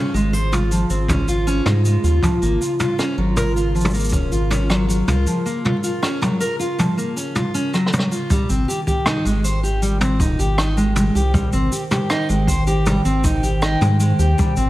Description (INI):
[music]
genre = folktronica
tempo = 79 BPM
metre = 4/4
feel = straight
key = Ab major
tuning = A4 = 440 Hz
[part]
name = warbly tape-like pad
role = sustained chords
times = 0.0-14.7 s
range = Db3 to G5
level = -25 LUFS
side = equal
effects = chorus, built-in reverb
[part]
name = fingerpicked steel-string acoustic guitar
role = arpeggios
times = 0.0-14.7 s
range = F3 to C5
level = -22 LUFS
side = equal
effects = tape echo
[part]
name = round analog bass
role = bass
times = 0.1-14.7 s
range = Eb1 to Ab2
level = -19 LUFS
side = equal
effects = none
[part]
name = jazz brush drum kit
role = drums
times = 0.2-14.7 s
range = rim click, shaker, toms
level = -23 LUFS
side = equal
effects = none
[part]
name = kick drum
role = drums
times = 1.1-14.5 s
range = none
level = -22 LUFS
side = equal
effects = none
[sound]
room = light reverb, small room ambience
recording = vinyl crackle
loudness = -16 LUFS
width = side -16 dB against mid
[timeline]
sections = 0.0-8.3 A section; 8.3-14.7 B section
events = none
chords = 0.0 Dbmaj7; 2.2 Gbmaj7; 8.3 Abmaj7